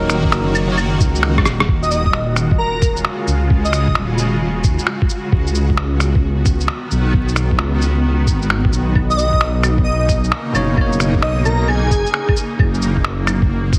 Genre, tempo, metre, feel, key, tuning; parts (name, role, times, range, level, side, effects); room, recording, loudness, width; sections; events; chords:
future garage; 132 BPM; 4/4; swing 66% on 16ths; Eb minor; A4 = 440 Hz
bell-like tine electric piano; accompaniment; 0.0-0.8, 10.5-11.7 s; B2 to D#5; -24 LUFS; equal; sidechain pumping, tape echo
granular cloud pad; sustained chords; 0.0-13.8 s; Db3 to Gb4; -26 LUFS; equal; built-in reverb, tremolo, sidechain pumping
dark detuned saw bass; bass; 0.0-13.8 s; Eb1 to Eb2; -20 LUFS; equal
electronic finger snaps, shaker, claves and rim click; drums; 0.1-13.8 s; -23 LUFS; equal; studio reverb
electronic kick drum; drums; 0.2-13.8 s; -19 LUFS; equal; studio reverb
airy dreamy lead; melody; 1.8-4.0, 9.1-12.3 s; Ab4 to Eb5; -24 LUFS; equal; chorus, analog delay
light reverb; heavily compressed radio sound, multiband compression, vinyl crackle; -17 LUFS; mono
0.0-1.7 A section; 1.7-13.8 B section
drum fill 1.3-1.7
0.0 Gb6; 1.7 Ebm11; 5.3 Db9sus4; 9.0 Bmaj9; 12.6 Gb6